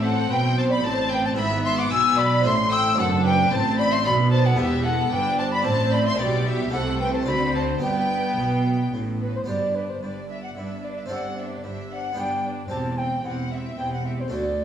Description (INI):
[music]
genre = classical, baroque-style concerto movement with solo episodes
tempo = 112 BPM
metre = 3/4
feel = straight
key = G major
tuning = A4 = 440 Hz
[part]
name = mellow concert flute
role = melody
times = 0.0-14.6 s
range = B4 to E6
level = -26 LUFS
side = left 2 dB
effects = none
[part]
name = rich symphonic violin section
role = melody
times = 0.0-14.6 s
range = F#4 to E6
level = -31 LUFS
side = left 2 dB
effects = none
[part]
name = dark studio violin section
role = second line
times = 0.0-14.6 s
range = G4 to A5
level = -29 LUFS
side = equal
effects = none
[part]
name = harpsichord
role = accompaniment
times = 0.0-14.6 s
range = D2 to B4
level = -32 LUFS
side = equal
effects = none
[part]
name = rich chamber viola section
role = accompaniment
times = 0.0-14.6 s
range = G3 to D4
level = -31 LUFS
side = equal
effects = none
[part]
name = rich studio cello section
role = bass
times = 0.0-14.6 s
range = D2 to D3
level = -28 LUFS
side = right 2 dB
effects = none
[part]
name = warm chamber double bass section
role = bass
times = 0.0-14.6 s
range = E1 to D2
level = -28 LUFS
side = right 2 dB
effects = none
[sound]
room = wet recital hall reverb, RT60 1.4 s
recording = studio reverb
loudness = -20 LUFS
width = side -9 dB against mid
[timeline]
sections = 0.0-9.5 A section; 9.5-14.6 B section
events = none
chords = 0.0 Am; 1.4 E/G#; 2.5 Am; 3.0 F#dim; 4.1 Bm7; 4.6 Em; 5.7 Am7; 6.2 G/B; 6.7 Am/C; 7.3 D7; 7.8 G; 11.1 D5/G; 12.2 G; 12.7 C/E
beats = 0.31 0.85 | 1.38 1.92 2.45 | 2.99 3.52 4.05 | 4.59 5.12 5.66 | 6.20 6.73 7.27 | 7.83 8.38 8.94 | 9.49 10.03 10.57 | 11.10 11.64 12.17 | 12.71 13.25 13.79 | 14.33